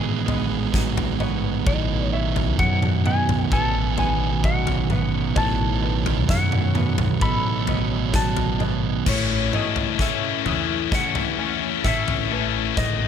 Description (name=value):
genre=post-rock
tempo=65 BPM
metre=4/4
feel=straight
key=A lydian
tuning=A4 = 440 Hz
part: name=clean lap steel guitar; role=melody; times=0.0-13.1 s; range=C#5 to B5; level=-28 LUFS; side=left 2 dB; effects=analog delay
part: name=airy breathy pad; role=sustained chords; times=0.0-13.1 s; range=D#3 to E5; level=-36 LUFS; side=left 1 dB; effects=chorus
part: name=felt-muted upright piano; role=arpeggios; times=0.0-13.1 s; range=B4 to D#6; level=-38 LUFS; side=right 4 dB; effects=analog delay
part: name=twangy electric guitar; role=arpeggios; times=0.0-13.1 s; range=A2 to A4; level=-32 LUFS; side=left 4 dB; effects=analog delay
part: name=fuzz guitar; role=riff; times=0.0-9.1 s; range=G#2 to D#4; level=-24 LUFS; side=right 10 dB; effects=distortion
part: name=upright bass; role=bass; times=0.0-13.1 s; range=A1 to F#2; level=-26 LUFS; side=left 1 dB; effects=none
part: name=big rock drum kit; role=drums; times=0.3-13.0 s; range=crash cymbal, kick drum, snare drum, toms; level=-26 LUFS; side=left 2 dB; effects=none
part: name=tight distorted guitar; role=riff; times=9.1-13.1 s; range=G#2 to E4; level=-23 LUFS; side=left 17 dB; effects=distortion
room=little or no reverb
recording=none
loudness=-19 LUFS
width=side -8 dB against mid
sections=0.0-9.1 A section; 9.1-13.1 B section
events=build-up 9.1-13.1; drum fill 9.1-13.1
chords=0.0 G#m7/A; 1.7 B7/A; 9.1 A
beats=0.74 | 1.67 2.59 3.52 4.44 | 5.37 6.29 7.22 8.14 | 9.07 9.99 10.92 11.85 | 12.78